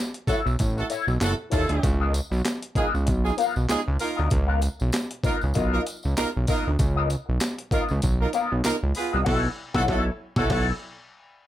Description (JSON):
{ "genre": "funk", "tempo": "97 BPM", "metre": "4/4", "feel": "swing 56% on 16ths", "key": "unclear", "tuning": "A4 = 440 Hz", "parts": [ { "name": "electric guitar with an envelope filter", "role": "accompaniment", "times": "0.1-10.7 s", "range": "Cb4 to Gb5", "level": "-28 LUFS", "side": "left 5 dB", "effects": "wah, lush chorus" }, { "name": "breakbeat sampler-style drum kit", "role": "drums", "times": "0.1-10.7 s", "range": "crash cymbal, handclaps, hi-hat, kick drum, snare drum", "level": "-27 LUFS", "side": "equal", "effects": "none" }, { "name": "clear horn section", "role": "second line", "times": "0.3-10.7 s", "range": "Ab3 to Cb5", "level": "-28 LUFS", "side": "right 3 dB", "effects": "none" }, { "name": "fat analog bass", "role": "bass", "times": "0.3-10.7 s", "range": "Gb1 to Eb2", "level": "-24 LUFS", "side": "equal", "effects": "none" }, { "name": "tambourine", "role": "percussion", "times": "0.3-9.1 s", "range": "none", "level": "-39 LUFS", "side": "left 1 dB", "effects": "none" } ], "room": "light reverb", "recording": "none", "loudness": "-22 LUFS", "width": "side -13 dB against mid", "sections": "0.0-11.5 A section", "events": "band accent 9.3-11.5", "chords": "0.0 Cb9sus4; 1.8 Db13; 9.3 Cb9sus4", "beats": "0.60 1.22 | 1.84 2.46 3.08 3.70 | 4.32 4.94 5.56 6.17 | 6.79 7.41 8.03 8.65 | 9.27 9.89 10.51" }